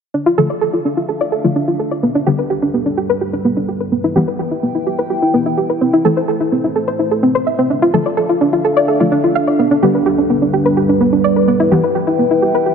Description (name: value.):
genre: techno.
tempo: 127 BPM.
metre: 4/4.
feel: straight.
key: D dorian.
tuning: A4 = 438 Hz.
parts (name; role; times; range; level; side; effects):
dark analog pad; sustained chords; 1.0-12.7 s; D3 to G5; -18 LUFS; right 1 dB; chorus, phaser.
soft round pluck; arpeggios; 0.1-12.7 s; B3 to F5; -15 LUFS; equal; chorus, tape echo.
synth brass stab; stabs; 0.4-11.8 s; D3 to C4; -20 LUFS; left 3 dB; chorus, tape echo.
room: moderate lush hall reverb, RT60 2.8 s.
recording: none.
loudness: -13 LUFS.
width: side -6 dB against mid.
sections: 0.1-12.7 A section.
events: filter sweep on synth stab 0.1-12.7.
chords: 0.1 Dm; 2.0 G/D; 3.9 Em; 5.8 Am; 7.7 Dm; 9.6 G/D; 11.5 Em.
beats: | 0.14 0.61 1.08 1.56 | 2.03 2.50 2.98 3.45 | 3.92 4.39 4.87 5.34 | 5.81 6.28 6.75 7.23 | 7.70 8.17 8.64 9.12 | 9.59 10.06 10.53 11.01 | 11.48 11.95 12.42.